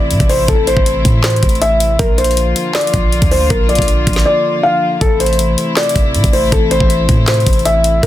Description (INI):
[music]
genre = hip hop, trap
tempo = 159 BPM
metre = 4/4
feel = half-time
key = A phrygian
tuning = A4 = 440 Hz
[part]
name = felt-muted upright piano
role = melody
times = 0.0-8.1 s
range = A4 to F5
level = -15 LUFS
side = left 1 dB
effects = none
[part]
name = dark symphonic string section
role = sustained chords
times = 0.0-8.1 s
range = C3 to F4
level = -19 LUFS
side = left 2 dB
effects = none
[part]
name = clean 808-style bass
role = bass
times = 0.0-8.1 s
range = A1 to A2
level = -16 LUFS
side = equal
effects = none
[part]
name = trap drum kit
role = drums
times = 0.1-8.1 s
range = handclaps, hi-hat, kick drum, snare drum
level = -15 LUFS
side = equal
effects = none
[sound]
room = little or no reverb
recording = dense, heavily limited modern master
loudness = -10 LUFS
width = side -13 dB against mid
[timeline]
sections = 0.0-8.1 A section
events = drums muted 4.3-5.0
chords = 0.0 Am; 2.0 Bb; 5.0 Am